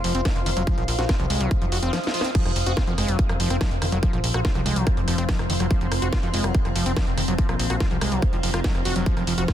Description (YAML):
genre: psychedelic trance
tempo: 143 BPM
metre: 4/4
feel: straight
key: unclear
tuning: A4 = 438 Hz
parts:
  - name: overdriven acid bass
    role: riff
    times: 0.0-9.5 s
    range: Eb3 to Gb4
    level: -29 LUFS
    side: equal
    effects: distortion, auto-pan, sidechain pumping, tape echo
  - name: plucky analog bass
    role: bass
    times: 0.0-9.5 s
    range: F1 to F2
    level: -26 LUFS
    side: equal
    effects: none
  - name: techno drum kit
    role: drums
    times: 0.0-9.5 s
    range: crash cymbal, hi-hat, rim click, snare drum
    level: -29 LUFS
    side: right 1 dB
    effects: soft clipping on snare
  - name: granular cloud pad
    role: texture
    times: 0.0-9.5 s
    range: F4 to F6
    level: -32 LUFS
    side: left 1 dB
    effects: built-in reverb, sidechain pumping
  - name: electronic kick drum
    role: drums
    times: 0.3-9.5 s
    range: none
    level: -24 LUFS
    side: equal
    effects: distortion
  - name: evolving wavetable pad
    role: sustained chords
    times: 2.6-9.5 s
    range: F3 to F4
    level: -30 LUFS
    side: left 2 dB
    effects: phaser, built-in reverb, sidechain pumping
  - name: formant-sweep wobble bass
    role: second line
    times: 2.7-4.0, 9.4-9.5 s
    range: Bb3 to C4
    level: -39 LUFS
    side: left 3 dB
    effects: none
room: little or no reverb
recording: dense, heavily limited modern master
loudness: -20 LUFS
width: side -11 dB against mid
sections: 0.0-9.5 A section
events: drum fill 1.9-2.4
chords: 0.0 F5